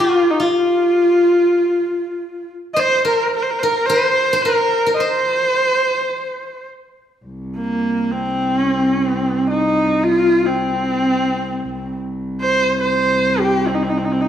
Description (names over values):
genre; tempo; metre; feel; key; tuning
mongolian traditional, Mongolian folk; 107 BPM; 4/4; straight; C yu mode; A4 = 439 Hz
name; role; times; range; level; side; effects
clear horsehead fiddle; melody; 0.0-14.3 s; Bb3 to Eb5; -16 LUFS; equal; none
steel-string zither; second line; 0.0-7.0 s; F4 to C5; -21 LUFS; left 1 dB; none
dark cello; drone; 7.3-14.3 s; C2; -22 LUFS; equal; none
room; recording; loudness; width
wet recital hall reverb, RT60 1.5 s; none; -15 LUFS; side -9 dB against mid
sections
0.0-7.2 A section; 7.2-14.3 B section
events
none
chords
none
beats
| 0.53 1.09 1.65 2.21 | 2.77 3.33 3.89 4.44 | 5.00 5.56 6.12 6.68 | 7.24 7.80 8.36 8.92 | 9.47 10.03 10.59 11.15 | 11.71 12.27 12.83 13.39 | 13.95